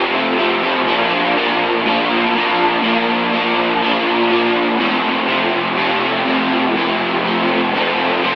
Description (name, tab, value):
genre	rock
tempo	122 BPM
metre	4/4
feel	straight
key	unclear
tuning	A4 = 442 Hz
part	crunchy overdriven guitar	solo	0.0-8.4 s	F2 to D4	-12 LUFS	equal	ensemble chorus, diffuse ambient delay
room	wet huge ambient reverb, RT60 8.1 s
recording	dreamy mix soaked in reverb, AM radio sound, faint mains hum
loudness	-12 LUFS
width	side -20 dB against mid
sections	0.9-8.4 A section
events	none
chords	0.0 F; 0.9 Bb; 4.8 F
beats	0.38 | 0.87 1.36 1.85 2.35 | 2.84 3.33 3.82 4.31 | 4.80 5.29 5.78 6.27 | 6.76 7.25 7.74 8.22